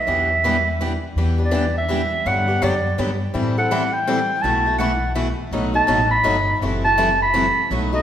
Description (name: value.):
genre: acoustic string swing (jazz manouche).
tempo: 165 BPM.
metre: 3/4.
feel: swing 61% on 8ths.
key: E minor.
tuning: A4 = 439 Hz.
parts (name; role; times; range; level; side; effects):
breathy clarinet; melody; 0.0-8.0 s; D5 to B5; -19 LUFS; right 1 dB; none.
picked steel-string acoustic guitar; accompaniment; 0.1-7.9 s; B2 to B4; -28 LUFS; right 4 dB; none.
picked swing-style acoustic guitar; accompaniment; 0.1-8.0 s; B2 to A4; -24 LUFS; left 3 dB; none.
upright bass; bass; 0.1-8.0 s; F#1 to A2; -24 LUFS; equal; none.
room: wet scoring stage reverb, RT60 1.9 s.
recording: recorded in a church or concert hall.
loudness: -17 LUFS.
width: side -10 dB against mid.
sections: 0.0-1.2 A section; 1.2-8.0 B section.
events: none.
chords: 0.1 Em7; 2.3 Gmaj7; 3.3 Am7; 4.4 B7sus4; 5.5 B7b13; 6.6 F#m7b5.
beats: | 0.08 0.44 0.81 | 1.17 1.53 1.90 | 2.26 2.62 2.98 | 3.35 3.71 4.07 | 4.44 4.80 5.16 | 5.53 5.89 6.25 | 6.61 6.97 7.34 | 7.70.